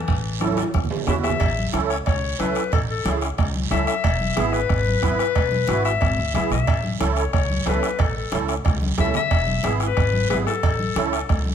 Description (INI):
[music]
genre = latin, cumbia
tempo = 182 BPM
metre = 4/4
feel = straight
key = A major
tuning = A4 = 442 Hz
[part]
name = electric guitar at the edge of break-up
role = melody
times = 0.0-1.0 s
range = A4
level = -42 LUFS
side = left 2 dB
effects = spring reverb, tape echo
[part]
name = breathy clarinet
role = second line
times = 0.0-11.5 s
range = E3 to E5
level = -25 LUFS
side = left 8 dB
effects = none
[part]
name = upright bass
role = bass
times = 0.1-11.5 s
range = E1 to E2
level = -25 LUFS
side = equal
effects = none
[part]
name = bombo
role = percussion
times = 0.1-11.5 s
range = none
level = -24 LUFS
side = right 1 dB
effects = none
[part]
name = congas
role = percussion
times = 0.1-11.5 s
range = none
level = -30 LUFS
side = left 1 dB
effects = none
[part]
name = guiro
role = percussion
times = 0.1-11.5 s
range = none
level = -36 LUFS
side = right 9 dB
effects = none
[part]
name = timbales and cowbell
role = percussion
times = 0.1-11.5 s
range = none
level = -32 LUFS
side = right 5 dB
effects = none
[part]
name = musette accordion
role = accompaniment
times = 0.4-11.2 s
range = B3 to B4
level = -27 LUFS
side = right 9 dB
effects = none
[sound]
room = moderate large studio reverb, RT60 1.2 s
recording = close, detailed microphones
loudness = -19 LUFS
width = side -8 dB against mid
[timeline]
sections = 0.0-1.4 A section; 1.4-11.5 B section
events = drum fill 0.4-1.4; clarinet solo 1.4-11.5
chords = 0.0 A; 4.0 E; 6.7 A; 9.3 E; 10.6 A